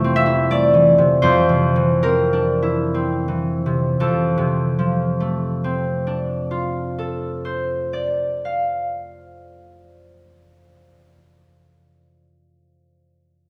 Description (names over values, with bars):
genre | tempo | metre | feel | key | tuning
classical, solo harp piece | 53-92 BPM | 3/4 | rubato | F major | A4 = 440 Hz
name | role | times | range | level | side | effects
concert harp | solo | 0.0-11.3 s | F2 to F5 | -19 LUFS | equal | none
room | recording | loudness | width
wet recital hall reverb, RT60 1.5 s | heard from further back in the room | -19 LUFS | mono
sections
0.0-4.0 A section; 4.0-9.8 B section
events
slowing down 0.0-4.0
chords
0.0 Fmaj7; 1.2 C9/F; 4.0 F6